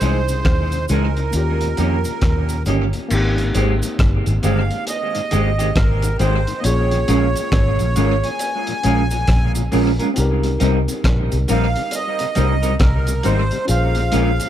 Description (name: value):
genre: lovers rock reggae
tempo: 68 BPM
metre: 4/4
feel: swing 62% on 16ths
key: Ab major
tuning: A4 = 440 Hz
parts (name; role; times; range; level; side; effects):
- accordion; melody; 0.0-14.5 s; Bb4 to Ab5; -24 LUFS; right 3 dB; light tremolo tuning, tape echo
- mellow tonewheel organ; accompaniment; 0.0-14.5 s; Eb2 to Ab4; -31 LUFS; left 7 dB; overdrive, stopped rotary speaker
- tine electric piano; accompaniment; 0.0-14.5 s; Bb3 to C5; -28 LUFS; left 4 dB; none
- electric guitar through a small old amp; stabs; 0.0-14.3 s; Eb3 to Bb4; -23 LUFS; right 1 dB; wide subtle chorus, tape echo
- vintage muted fingered electric bass; bass; 0.0-14.4 s; G1 to F2; -18 LUFS; equal; none
- crunchy breakbeat drum kit; drums; 0.0-14.5 s; crash cymbal, hi-hat, kick drum, rim click; -22 LUFS; equal; tape echo
- cabasa; percussion; 0.0-14.5 s; none; -34 LUFS; right 6 dB; none
room: studio ambience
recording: dark, warm production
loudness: -16 LUFS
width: side -11 dB against mid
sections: 0.0-3.1 A section; 3.1-14.5 B section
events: none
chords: 0.0 Dbmadd9; 1.3 Eb7; 3.1 Abmaj7; 6.6 Bbm7; 10.2 Cm7; 13.7 Bbm7